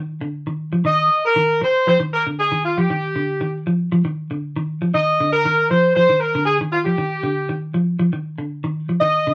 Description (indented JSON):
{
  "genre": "afrobeat",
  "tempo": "118 BPM",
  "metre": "4/4",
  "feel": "straight",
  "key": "unclear",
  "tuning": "A4 = 438 Hz",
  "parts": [
    { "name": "clean electric guitar", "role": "arpeggios", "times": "0.0-9.3 s", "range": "D3 to F3", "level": "-24 LUFS", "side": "equal", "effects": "none" },
    { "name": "clear horn section", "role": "melody", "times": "0.9-9.3 s", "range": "F4 to Eb5", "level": "-19 LUFS", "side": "equal", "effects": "none" }
  ],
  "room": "moderate studio ambience, RT60 0.5 s",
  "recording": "band playing live in one room",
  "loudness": "-19 LUFS",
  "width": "mono",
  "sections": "0.0-9.3 A section",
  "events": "none",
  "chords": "0.0 Ebmaj7sus2/D",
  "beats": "0.34 | 0.86 1.37 1.88 2.39 | 2.90 3.41 3.92 4.43 | 4.94 5.45 5.96 6.47 | 6.98 7.49 8.00 8.51 | 9.02"
}